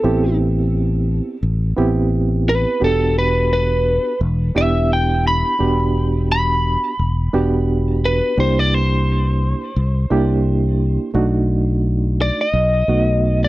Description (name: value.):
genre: straight-eighth soul blues.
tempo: 86 BPM.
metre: 4/4.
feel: swing 55% on 16ths.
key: E minor.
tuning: A4 = 440 Hz.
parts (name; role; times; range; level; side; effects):
lightly driven lead guitar; melody; 0.0-13.5 s; A4 to B5; -20 LUFS; equal; none.
bright reed electric piano; accompaniment; 0.0-13.5 s; A3 to G4; -21 LUFS; right 3 dB; fast tremolo.
fingered electric bass; bass; 0.0-13.5 s; E1 to C2; -18 LUFS; left 1 dB; none.
room: little or no reverb.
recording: dry, close 1970s-style studio recording.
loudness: -15 LUFS.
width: side -17 dB against mid.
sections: 0.0-13.5 A section.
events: lead electric guitar solo 0.0-13.5.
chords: 0.0 Am9; 2.8 Em9; 8.4 C7; 11.1 B7#9.